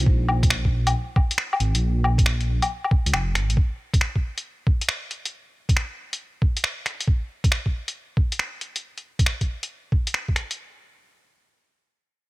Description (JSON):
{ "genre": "future garage", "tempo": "137 BPM", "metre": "4/4", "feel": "swing 67% on 16ths", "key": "unclear", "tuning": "A4 = 444 Hz", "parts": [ { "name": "dark detuned saw bass", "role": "bass", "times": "0.0-3.6 s", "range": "F1 to Db2", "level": "-22 LUFS", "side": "equal", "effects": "tube saturation, sidechain pumping" }, { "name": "electronic kick drum", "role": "drums", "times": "0.1-10.3 s", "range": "none", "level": "-20 LUFS", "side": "equal", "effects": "none" }, { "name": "lo-fi sampler-style drum kit", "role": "drums", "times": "0.3-10.6 s", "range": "finger snaps, hi-hat, woodblock", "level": "-25 LUFS", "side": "left 1 dB", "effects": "none" } ], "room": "little or no reverb", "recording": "none", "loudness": "-21 LUFS", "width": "side -20 dB against mid", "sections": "0.0-10.6 A section; 10.6-12.3 B section", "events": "none", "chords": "none" }